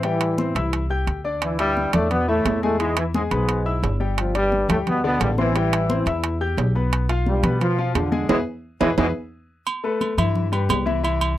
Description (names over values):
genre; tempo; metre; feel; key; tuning
latin, salsa; 175 BPM; 4/4; straight; A minor; A4 = 441 Hz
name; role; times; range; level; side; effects
bright trombone section; melody; 0.0-9.1 s; G2 to F4; -22 LUFS; equal; none
clear concert grand piano; accompaniment; 0.0-11.3 s; D3 to G6; -26 LUFS; left 4 dB; none
upright bass; bass; 0.0-11.4 s; G1 to B2; -24 LUFS; equal; none
congas; percussion; 0.0-11.4 s; none; -28 LUFS; left 1 dB; none
timbales and agogo bells; percussion; 0.0-11.4 s; none; -26 LUFS; right 7 dB; none
room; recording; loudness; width
light reverb; dry, close 1970s-style studio recording; -19 LUFS; side -14 dB against mid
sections
0.0-9.7 A section; 9.7-11.4 B section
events
band accent 8.3-9.7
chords
0.0 Am7; 1.4 Dsus2; 2.8 E; 4.2 G7sus4; 5.6 Am7; 6.9 Bdim; 8.3 E; 9.7 Asus2; 10.4 G6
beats
| 0.04 0.38 0.73 1.07 | 1.42 1.76 2.11 2.46 | 2.80 3.15 3.49 3.83 | 4.18 4.52 4.87 5.21 | 5.55 5.90 6.24 6.58 | 6.93 7.27 7.61 7.96 | 8.30 8.64 8.98 9.33 | 9.67 10.01 10.35 10.69 | 11.04 11.38